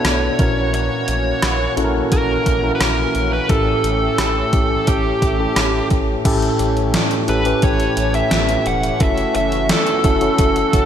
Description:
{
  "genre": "1980s-style pop",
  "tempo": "87 BPM",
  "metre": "4/4",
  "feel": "straight",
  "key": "unclear",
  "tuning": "A4 = 440 Hz",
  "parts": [
    { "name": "dark smooth lead guitar", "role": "melody", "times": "0.0-10.9 s", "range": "G4 to F#5", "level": "-21 LUFS", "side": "equal", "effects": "overdrive, shimmer reverb" },
    { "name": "tine electric piano", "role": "accompaniment", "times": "0.0-10.9 s", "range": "A2 to B4", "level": "-20 LUFS", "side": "left 1 dB", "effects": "medium stereo tremolo, shimmer reverb" },
    { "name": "lush unison pad", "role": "sustained chords", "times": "0.0-10.9 s", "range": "E3 to G4", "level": "-25 LUFS", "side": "right 2 dB", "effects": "chorus, shimmer reverb" },
    { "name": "round analog bass", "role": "bass", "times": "0.0-10.9 s", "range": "E1 to B1", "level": "-24 LUFS", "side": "equal", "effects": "none" },
    { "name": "gated 80s digital drum machine", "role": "drums", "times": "0.0-10.9 s", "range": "crash cymbal, hi-hat, kick drum, rim click, snare drum", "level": "-20 LUFS", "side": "equal", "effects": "gated reverb, gated reverb snare, overdrive" }
  ],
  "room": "moderate plate reverb, RT60 3.1 s",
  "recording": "bright 1980s-style digital production",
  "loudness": "-15 LUFS",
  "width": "side -9 dB against mid",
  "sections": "0.0-6.3 A section; 6.3-10.9 B section",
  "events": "none",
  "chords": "0.4 F#7/A#; 3.5 A7; 9.0 F#m7"
}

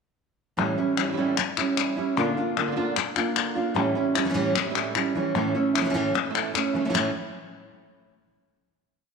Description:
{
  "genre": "flamenco",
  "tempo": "151 BPM",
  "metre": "4/4",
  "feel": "straight",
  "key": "A phrygian dominant",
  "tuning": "A4 = 440 Hz",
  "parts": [
    { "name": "nylon-string guitar", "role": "accompaniment", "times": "0.6-7.1 s", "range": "A2 to F4", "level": "-25 LUFS", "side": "right 2 dB", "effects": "none" },
    { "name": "flamenco guitar", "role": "stabs", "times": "0.6-7.1 s", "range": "A2 to F4", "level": "-32 LUFS", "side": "right 7 dB", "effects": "none" },
    { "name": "palmas hand claps", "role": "percussion", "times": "0.6-7.0 s", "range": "none", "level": "-28 LUFS", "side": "left 12 dB", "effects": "none" }
  ],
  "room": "wet echo chamber reverb, RT60 1.9 s, studio reverb",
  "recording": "1960s-style stereo with parts hard left and right",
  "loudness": "-22 LUFS",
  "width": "side -5 dB against mid",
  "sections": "0.6-6.9 groove; 6.9-8.5 final chord",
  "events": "none",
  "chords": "0.6 A7; 2.2 Bb; 3.8 A7; 5.4 A"
}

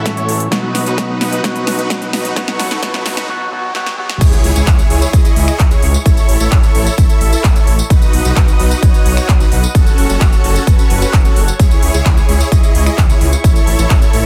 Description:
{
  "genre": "EDM, festival progressive house",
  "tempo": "130 BPM",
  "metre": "4/4",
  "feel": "straight",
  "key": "C# minor",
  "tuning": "A4 = 440 Hz",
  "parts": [
    { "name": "electric guitar with an envelope filter", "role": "accompaniment", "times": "0.0-4.2 s", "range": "A2 to F#4", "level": "-23 LUFS", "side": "equal", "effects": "sidechain pumping, dub echo" },
    { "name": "lush unison pad", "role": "sustained chords", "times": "0.0-14.3 s", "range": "E4 to D#6", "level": "-27 LUFS", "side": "equal", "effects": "chorus, sidechain pumping" },
    { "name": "supersaw chords", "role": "riff", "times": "0.0-14.3 s", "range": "C#4 to E5", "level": "-22 LUFS", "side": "equal", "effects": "sidechain pumping, low-pass filter, dub echo" },
    { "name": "riser and impact", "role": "sound effects", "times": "2.0-6.1 s", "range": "none", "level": "-31 LUFS", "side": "equal", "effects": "none" },
    { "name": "detuned saw bass", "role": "bass", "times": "0.1-14.3 s", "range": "F#1 to C#2", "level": "-19 LUFS", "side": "equal", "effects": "chorus, sidechain pumping, high-pass filter" },
    { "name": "big-room dance drum kit", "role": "drums", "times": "0.1-14.2 s", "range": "crash cymbal, finger snaps, handclaps, hi-hat, snare drum, tambourine", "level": "-23 LUFS", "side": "equal", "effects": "overdrive, soft clipping on snare" },
    { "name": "electronic kick drum", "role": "drums", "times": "0.1-14.0 s", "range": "none", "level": "-13 LUFS", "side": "equal", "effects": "overdrive, high-pass filter on kick" }
  ],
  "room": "light reverb",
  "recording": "dense, heavily limited modern master, high-pass filter",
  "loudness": "-13 LUFS",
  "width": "mono",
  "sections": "0.0-4.2 A section; 4.2-14.3 B section",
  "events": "build-up 0.0-4.2; drum fill 0.0-3.3, 3.7-4.2; filter sweep on supersaw synth 0.0-4.2; drop 4.2-14.3; impact 4.2-6.1",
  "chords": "0.0 A; 0.5 B; 2.4 F#m; 4.2 C#m; 6.1 A; 7.9 B; 9.7 F#m; 11.6 C#m; 13.4 A"
}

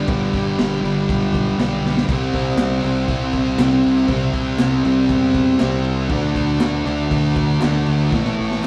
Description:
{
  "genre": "garage rock duo or trio",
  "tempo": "119 BPM",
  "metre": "4/4",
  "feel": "straight",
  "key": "unclear",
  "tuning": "A4 = 440 Hz",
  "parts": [
    { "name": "combo organ", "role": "sustained chords", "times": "0.0-8.7 s", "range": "E4 to E5", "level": "-32 LUFS", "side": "equal", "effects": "none" },
    { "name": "thick fuzz guitar", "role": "riff", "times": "0.0-8.7 s", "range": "G2 to D4", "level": "-20 LUFS", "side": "equal", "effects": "distortion" },
    { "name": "fuzz fingered electric bass", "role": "bass", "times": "0.0-8.6 s", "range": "G1 to E2", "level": "-27 LUFS", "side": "equal", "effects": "overdrive" },
    { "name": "crunchy breakbeat drum kit", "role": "drums", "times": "0.1-8.7 s", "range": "crash cymbal, kick drum, snare drum", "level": "-26 LUFS", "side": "equal", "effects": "none" },
    { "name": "group handclap", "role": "percussion", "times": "2.6-8.7 s", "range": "none", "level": "-38 LUFS", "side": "equal", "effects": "none" }
  ],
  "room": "wet studio reverb, RT60 0.7 s",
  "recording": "band playing live in one room",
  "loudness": "-18 LUFS",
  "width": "mono",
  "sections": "0.0-8.7 A section",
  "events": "drum fill 1.8, 8.1-8.7",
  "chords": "0.0 G; 2.1 C; 6.1 D; 8.1 A"
}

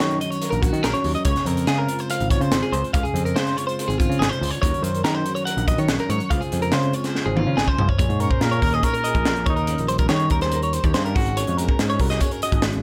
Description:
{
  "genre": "math rock and midwest emo",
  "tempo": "143 BPM",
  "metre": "4/4",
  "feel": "straight",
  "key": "Db major",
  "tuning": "A4 = 441 Hz",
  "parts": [
    { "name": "mellow electric guitar", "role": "accompaniment", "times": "0.0-12.8 s", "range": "Ab2 to C5", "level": "-30 LUFS", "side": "equal", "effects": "lush chorus" },
    { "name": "twelve-string electric guitar", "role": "arpeggios", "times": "0.0-12.6 s", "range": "F4 to Gb5", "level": "-28 LUFS", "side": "equal", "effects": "none" },
    { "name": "picked electric bass", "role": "bass", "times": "0.0-12.8 s", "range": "Ab1 to Eb3", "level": "-26 LUFS", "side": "equal", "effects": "none" },
    { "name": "crisp fusion drum kit", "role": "drums", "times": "0.0-12.8 s", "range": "hi-hat, kick drum, snare drum, toms", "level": "-26 LUFS", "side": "equal", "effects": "none" },
    { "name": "warm trumpet", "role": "melody", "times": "8.2-9.9 s", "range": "Eb4 to Db5", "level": "-28 LUFS", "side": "equal", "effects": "analog delay" }
  ],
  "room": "light reverb",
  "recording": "none",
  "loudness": "-21 LUFS",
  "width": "mono",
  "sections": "0.0-8.0 A section; 8.0-12.8 B section",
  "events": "drum fill 7.2-8.0",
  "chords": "0.0 Ebm7; 1.3 Dbmaj7; 4.6 Ebm7; 6.3 Dbmaj7; 8.0 Bbm7; 9.5 Eb7; 11.2 Ab7sus4"
}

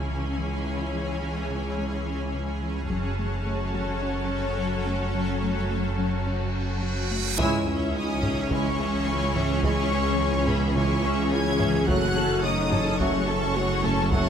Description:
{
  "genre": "cinematic, hybrid orchestral and electronic film score",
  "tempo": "107 BPM",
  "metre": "4/4",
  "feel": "straight",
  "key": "C# minor",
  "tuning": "A4 = 438 Hz",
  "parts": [
    { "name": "warm symphonic violin section", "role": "second line", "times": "0.0-14.3 s", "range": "G#4 to A5", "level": "-34 LUFS", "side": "left 2 dB", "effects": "none" },
    { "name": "clear symphonic viola section", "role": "accompaniment", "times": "0.0-14.3 s", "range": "G#3 to A4", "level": "-32 LUFS", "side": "right 2 dB", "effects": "none" },
    { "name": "granular cloud pad", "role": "sustained chords", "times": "0.0-14.3 s", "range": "E3 to C#5", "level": "-31 LUFS", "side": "left 2 dB", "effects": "built-in reverb" },
    { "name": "rich symphonic cello section", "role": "bass", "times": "0.0-14.3 s", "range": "C#2 to F#2", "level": "-32 LUFS", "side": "right 2 dB", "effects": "none" },
    { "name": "warm sub bass", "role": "bass", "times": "0.0-14.3 s", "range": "F#1 to C#2", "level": "-33 LUFS", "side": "equal", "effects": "none" },
    { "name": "impact, reverse cymbal and sub drop", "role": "sound effects", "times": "0.0-0.7, 6.2-9.6 s", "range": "none", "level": "-34 LUFS", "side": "right 2 dB", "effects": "none" },
    { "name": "soft round pluck", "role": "arpeggios", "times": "0.1-14.3 s", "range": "C#3 to F#4", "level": "-35 LUFS", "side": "left 2 dB", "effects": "chorus, ping-pong delay" },
    { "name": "taiko ensemble", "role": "drums", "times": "2.9-4.0, 7.4-14.3 s", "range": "none", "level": "-31 LUFS", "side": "equal", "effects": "none" },
    { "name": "clear symphonic violin section", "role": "melody", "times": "6.8-14.3 s", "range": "B5 to G#6", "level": "-32 LUFS", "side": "left 2 dB", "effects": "none" },
    { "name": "clear French horn section", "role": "sustained chords", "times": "6.8-14.3 s", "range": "B3 to G#4", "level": "-31 LUFS", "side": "left 6 dB", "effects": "none" },
    { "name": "clear trombone section", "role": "sustained chords", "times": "7.4-14.3 s", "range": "E3 to A3", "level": "-34 LUFS", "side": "right 4 dB", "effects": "none" },
    { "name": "mellow tuba", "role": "bass", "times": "7.4-14.3 s", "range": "F#1 to C#2", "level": "-30 LUFS", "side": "right 4 dB", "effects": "none" },
    { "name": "rich studio double bass section", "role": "bass", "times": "7.4-14.3 s", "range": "F#1 to C#2", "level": "-33 LUFS", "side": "right 4 dB", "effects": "none" }
  ],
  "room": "moderate scoring stage reverb, RT60 1.5 s",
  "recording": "none",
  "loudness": "-23 LUFS",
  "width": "side -8 dB against mid",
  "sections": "0.0-7.4 A section; 7.4-14.3 B section",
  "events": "impact 0.0-0.7, 7.4-9.6; reverse cymbal 6.2-7.4; band accent 7.4-7.9",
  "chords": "0.0 C#m; 2.9 F#m; 7.4 C#m; 11.9 F#m"
}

